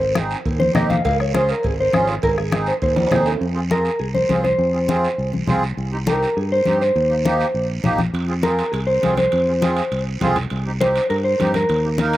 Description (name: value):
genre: latin, cumbia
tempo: 203 BPM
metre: 4/4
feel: straight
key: F minor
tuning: A4 = 440 Hz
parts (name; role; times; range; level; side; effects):
- mellow electric guitar; melody; 0.0-12.2 s; Ab4 to F5; -20 LUFS; equal; spring reverb, slapback echo
- fingered electric bass; bass; 0.0-12.2 s; Ab1 to G2; -23 LUFS; equal; none
- congas; percussion; 0.0-12.1 s; none; -23 LUFS; left 3 dB; none
- accordion; accompaniment; 0.2-12.2 s; Bb3 to Bb4; -25 LUFS; right 2 dB; light tremolo tuning, slapback echo
- bombo; percussion; 0.2-3.3 s; none; -26 LUFS; equal; none
- guiro; percussion; 0.2-12.2 s; none; -34 LUFS; right 7 dB; none
- cowbell and timbales; percussion; 0.5-3.3, 8.1-12.2 s; none; -30 LUFS; right 7 dB; slapback echo
room: light reverb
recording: recorded outdoors, with no room sound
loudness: -17 LUFS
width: side -14 dB against mid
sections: 0.0-3.4 A section; 3.4-12.2 B section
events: drum fill 3.0-3.4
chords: 0.0 Ab; 1.0 Db; 2.2 Ab; 3.4 Fm; 5.8 Cm; 7.0 Eb; 8.1 Fm; 10.5 Cm